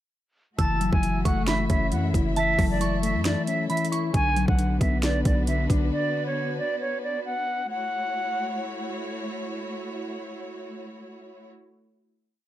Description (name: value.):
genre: hip hop, trap.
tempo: 135 BPM.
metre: 4/4.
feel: half-time.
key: F# minor.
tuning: A4 = 440 Hz.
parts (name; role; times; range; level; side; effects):
silver concert flute; melody; 0.6-9.0 s; C#5 to A5; -28 LUFS; right 1 dB; low-pass filter, ping-pong delay.
soft synth bell; second line; 0.6-4.1 s; A5 to E6; -34 LUFS; right 4 dB; chorus, ping-pong delay.
mellow electric guitar; accompaniment; 0.6-6.8 s; D3 to E4; -27 LUFS; left 4 dB; low-pass filter.
warm symphonic string section; sustained chords; 0.6-11.5 s; A3 to E5; -35 LUFS; equal; none.
hard-hitting 808-style bass; bass; 0.6-5.9 s; F#1 to F#2; -26 LUFS; right 1 dB; none.
trap drum kit; drums; 0.6-5.8 s; hi-hat, kick drum, snare drum; -26 LUFS; right 1 dB; none.
room: digital ambience.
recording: dark, warm production.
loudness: -23 LUFS.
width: side -13 dB against mid.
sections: 0.6-7.7 hook; 7.7-11.3 final chord.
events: none.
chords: 0.6 F#m7; 4.1 Bm; 7.7 F#m7.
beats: | 0.59 1.03 1.48 1.92 | 2.36 2.81 3.25 3.70 | 4.14 4.59 5.03 5.47 | 5.92 6.36 6.81 7.25 | 7.70 8.14 8.59 9.03 | 9.47 9.92 10.36 10.81.